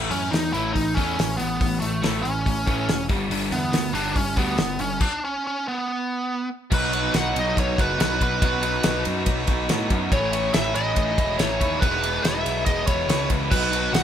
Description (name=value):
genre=classic rock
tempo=141 BPM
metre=4/4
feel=straight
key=B mixolydian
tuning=A4 = 440 Hz
part: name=biting overdriven guitar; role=riff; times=0.0-14.0 s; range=E2 to F#4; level=-26 LUFS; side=equal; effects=none
part: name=fuzz picked electric bass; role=bass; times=0.0-14.0 s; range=E1 to A2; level=-28 LUFS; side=left 1 dB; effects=overdrive
part: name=bluesy overdriven lead guitar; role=melody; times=0.1-14.0 s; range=A3 to F#5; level=-25 LUFS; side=right 1 dB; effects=distortion
part: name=damped 70s drum kit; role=drums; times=0.1-14.0 s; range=crash cymbal, hi-hat, kick drum, ride cymbal, snare drum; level=-25 LUFS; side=equal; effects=none
room=light reverb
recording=band playing live in one room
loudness=-20 LUFS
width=side -9 dB against mid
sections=0.0-6.7 A section; 6.7-14.0 B section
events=stop 5.0-6.7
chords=0.0 A; 3.1 G; 6.7 B; 10.1 A; 11.8 E; 13.5 B